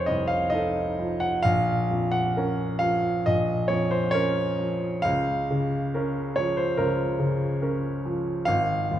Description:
classical, romantic nocturne for solo piano; 65-72 BPM; 4/4; rubato; Bb minor; A4 = 440 Hz
warm baby grand piano; solo; 0.0-9.0 s; F1 to Gb5; -23 LUFS; equal
wet recital hall reverb, RT60 1.8 s; -23 LUFS; side -11 dB against mid
0.0-9.0 A section
0.0 F7; 1.5 Bbm; 5.1 Bbm/Db; 8.5 Ab5
0.54 | 1.45 2.37 3.28 4.16 | 5.06 5.95 6.79 7.63 | 8.49

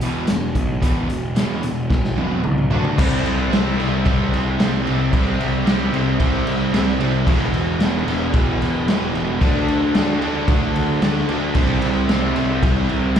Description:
hard rock; 112 BPM; 4/4; straight; A4 = 440 Hz
distorted electric guitar; riff; 0.0-13.2 s; E2 to D4; -26 LUFS; left 11 dB; distortion, slapback echo
overdriven semi-hollow guitar; riff; 0.0-13.2 s; E2 to D4; -24 LUFS; right 11 dB
fuzz picked electric bass; bass; 0.0-13.2 s; E1 to D2; -23 LUFS; left 1 dB; overdrive
raw garage drum kit; drums; 0.0-13.2 s; crash cymbal, hi-hat, kick drum, snare drum, toms; -21 LUFS; equal
overdriven electric guitar; riff; 3.0-13.2 s; E2 to D4; -24 LUFS; left 1 dB
studio reverb; live gig heard through the venue's PA, club reverb; -16 LUFS; side -8 dB against mid
0.0-3.0 A section; 3.0-13.2 B section
drum fill 1.9-3.0
0.0 E5; 2.7 D5; 3.0 C5; 7.3 E5; 9.4 D5; 11.6 C5
0.29 | 0.83 1.37 1.91 2.45 | 2.98 3.52 4.06 4.59 | 5.13 5.67 6.20 6.74 | 7.27 7.81 8.34 8.88 | 9.41 9.95 10.48 11.02 | 11.55 12.09 12.62 13.16

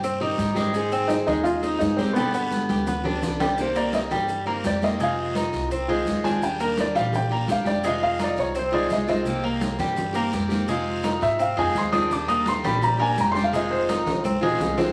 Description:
latin, Cuban son and guajira; 169 BPM; 4/4; straight; C minor; A4 = 440 Hz
felt-muted upright piano; melody; 0.0-13.8 s; B3 to Eb6; -26 LUFS; equal
picked steel-string acoustic guitar; accompaniment; 0.0-14.9 s; B2 to Ab4; -31 LUFS; equal
Cuban tres; arpeggios; 0.0-14.9 s; G3 to G4; -30 LUFS; equal
upright bass; bass; 0.0-14.9 s; F1 to Ab2; -35 LUFS; equal
congas; percussion; 0.0-14.9 s; -31 LUFS; equal
guiro; percussion; 0.0-14.9 s; -43 LUFS; equal
maracas; percussion; 0.0-14.9 s; -48 LUFS; equal
moderate large studio reverb, RT60 0.8 s; vinyl crackle; -24 LUFS; mono
0.0-3.6 A section; 3.6-14.9 B section
drum fill 2.5-3.6, 13.9-14.9; felt piano solo 3.6-14.9
0.0 Cm; 0.7 Ab; 2.2 G; 3.6 Cm7; 5.0 Fm7; 6.4 Ebmaj7; 7.8 Fm7; 9.3 Cm7; 10.7 Fm7; 12.1 Ebmaj7; 13.5 Fm7
0.04 0.39 | 0.74 1.10 1.45 1.81 | 2.16 2.52 2.87 3.23 | 3.58 3.94 4.29 4.64 | 5.00 5.35 5.71 6.06 | 6.42 6.77 7.13 7.48 | 7.84 8.20 8.55 8.91 | 9.26 9.62 9.97 10.33 | 10.68 11.04 11.39 11.75 | 12.11 12.46 12.82 13.17 | 13.53 13.88 14.24 14.60

